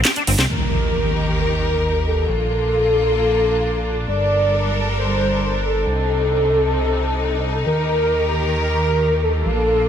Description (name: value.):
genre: uplifting trance.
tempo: 134 BPM.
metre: 4/4.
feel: straight.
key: unclear.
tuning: A4 = 441 Hz.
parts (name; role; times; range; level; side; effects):
fat analog bass; bass; 0.0-9.9 s; G1 to Eb2; -22 LUFS; equal; none.
house drum kit; drums; 0.1-0.5 s; handclaps, hi-hat, snare drum; -23 LUFS; right 1 dB; none.
warm velvety synth lead; second line; 0.5-9.9 s; A4 to D5; -20 LUFS; equal; chorus, ping-pong delay.
bright studio string section; sustained chords; 0.5-9.9 s; C3 to Bb4; -24 LUFS; equal; none.
impact; sound effects; 0.5-2.3 s; none; -24 LUFS; equal; none.
room: light reverb, digital ambience.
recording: none.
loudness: -16 LUFS.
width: side -9 dB against mid.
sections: 0.5-9.9 A section.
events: drum fill 0.1-0.5; band accent 0.4; impact 0.5-2.3.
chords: 0.5 Eb; 2.3 Bb; 4.1 Gmadd9; 5.9 Cmadd9; 7.7 Eb.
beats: 0.05 | 0.50 0.95 1.39 1.84 | 2.29 2.74 3.19 3.63 | 4.08 4.53 4.98 5.42 | 5.87 6.32 6.77 7.21 | 7.66 8.11 8.56 9.01 | 9.45.